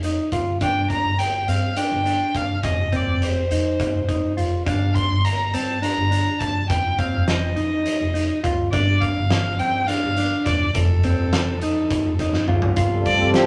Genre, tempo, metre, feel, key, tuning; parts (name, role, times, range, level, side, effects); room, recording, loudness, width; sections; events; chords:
progressive instrumental, band music in an uneven meter; 207 BPM (eighths); 7/8; straight; G minor; A4 = 440 Hz
mellow electric guitar; arpeggios; 0.0-13.5 s; C4 to G4; -27 LUFS; equal; harmonic tremolo
upright bass; bass; 0.0-13.5 s; E1 to G2; -26 LUFS; equal
oversized low-tuned drum kit; drums; 0.0-13.5 s; hi-hat, kick drum, snare drum, toms; -27 LUFS; equal
rich violin; melody; 0.6-13.5 s; A4 to C6; -26 LUFS; equal
dark analog pad; accompaniment; 12.8-13.5 s; G3 to A4; -23 LUFS; equal; chorus
moderate studio reverb, RT60 0.6 s; -21 LUFS; mono
0.0-12.8 A section
drum fill 12.3-12.8
0.0 F5; 0.6 G5; 2.6 F5; 4.7 Gm7; 6.7 F5; 8.7 G5; 10.8 F7; 12.8 G5